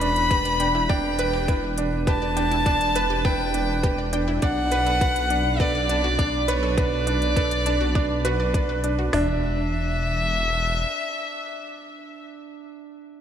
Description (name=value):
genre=piano and strings electronica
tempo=102 BPM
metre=4/4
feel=straight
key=E minor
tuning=A4 = 441 Hz
part: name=dark violin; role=melody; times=0.0-12.2 s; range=C#5 to B5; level=-25 LUFS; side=left 1 dB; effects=tape echo
part: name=felt-muted upright piano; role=riff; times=0.0-13.2 s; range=D4 to B4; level=-26 LUFS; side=right 3 dB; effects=tape echo
part: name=dark detuned saw bass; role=bass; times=0.0-10.9 s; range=E1 to B1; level=-26 LUFS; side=equal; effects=sidechain pumping
part: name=electronic hi-hat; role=drums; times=0.0-9.0 s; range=none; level=-35 LUFS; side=left 1 dB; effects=none
part: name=wide unison pluck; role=arpeggios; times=0.3-9.4 s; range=D4 to A5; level=-33 LUFS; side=left 2 dB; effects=sidechain pumping, tape echo
part: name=organic electronic drum kit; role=drums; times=0.3-9.3 s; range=hi-hat, kick drum, snare drum, toms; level=-24 LUFS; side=equal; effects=none
room=moderate lush hall reverb, RT60 2.7 s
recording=dreamy mix soaked in reverb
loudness=-20 LUFS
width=side -9 dB against mid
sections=0.0-9.1 A section; 9.1-11.5 B section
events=drop 0.0-9.1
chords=0.0 Em7; 4.4 Bm7; 9.1 Dsus2/E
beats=0.30 0.89 1.48 | 2.07 2.66 3.25 3.83 | 4.42 5.01 5.60 6.19 | 6.78 7.36 7.95 8.54 | 9.13 9.72 10.30 10.89